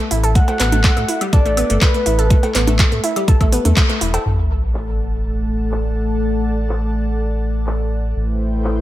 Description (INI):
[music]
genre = progressive house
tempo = 123 BPM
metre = 4/4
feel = straight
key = unclear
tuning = A4 = 438 Hz
[part]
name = analog pluck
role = arpeggios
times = 0.0-4.2 s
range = G3 to A4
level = -21 LUFS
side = right 1 dB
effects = chorus, sidechain pumping, dub echo
[part]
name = round analog bass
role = bass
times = 0.1-8.8 s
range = E1 to A2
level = -19 LUFS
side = equal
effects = sidechain pumping
[part]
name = pop drum kit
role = drums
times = 0.1-8.7 s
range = handclaps, hi-hat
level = -22 LUFS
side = equal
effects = low-pass filter on hats, small room ambience, low-pass filter on snare
[part]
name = soft octave-layered synth lead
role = melody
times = 0.4-2.5 s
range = B4 to F#5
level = -23 LUFS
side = left 1 dB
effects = chorus, sidechain pumping, dub echo
[part]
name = electronic kick drum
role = drums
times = 0.4-3.9 s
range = none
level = -14 LUFS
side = equal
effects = overdrive, small room ambience
[part]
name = cowbell, congas and woodblock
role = percussion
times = 0.5-4.2 s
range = none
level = -26 LUFS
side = right 2 dB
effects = sidechain pumping on perc, small room ambience
[part]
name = lush unison pad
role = sustained chords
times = 4.3-8.8 s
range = A3 to A5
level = -23 LUFS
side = left 1 dB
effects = chorus, sidechain pumping
[part]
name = sub drop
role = sound effects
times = 4.3-6.2 s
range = none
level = -23 LUFS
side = equal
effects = none
[sound]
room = digital ambience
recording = none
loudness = -15 LUFS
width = side -14 dB against mid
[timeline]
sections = 0.0-4.3 A section; 4.3-8.8 B section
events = band accent 3.8; impact 4.3-6.2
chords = 0.4 Gmaj7; 4.3 D/A; 8.2 Am7